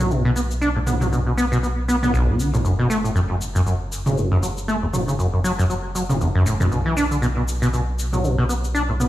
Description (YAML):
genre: acid house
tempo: 118 BPM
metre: 4/4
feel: swing 57% on 16ths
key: unclear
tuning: A4 = 438 Hz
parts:
  - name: acid bass, saw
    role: riff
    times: 0.0-9.1 s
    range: B1 to D4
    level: -20 LUFS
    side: equal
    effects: lush chorus, cassette tape, tape echo
  - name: saturated sub bass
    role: bass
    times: 0.0-9.1 s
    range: F#1 to B1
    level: -26 LUFS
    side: equal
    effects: none
  - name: electronic cabasa and toms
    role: drums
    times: 0.0-9.1 s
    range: none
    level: -27 LUFS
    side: equal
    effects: none
room: moderate studio reverb, RT60 0.5 s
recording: played on a big sound system in a bare room, stone room reverb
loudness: -18 LUFS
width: side -14 dB against mid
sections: 0.0-9.1 A section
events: none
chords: none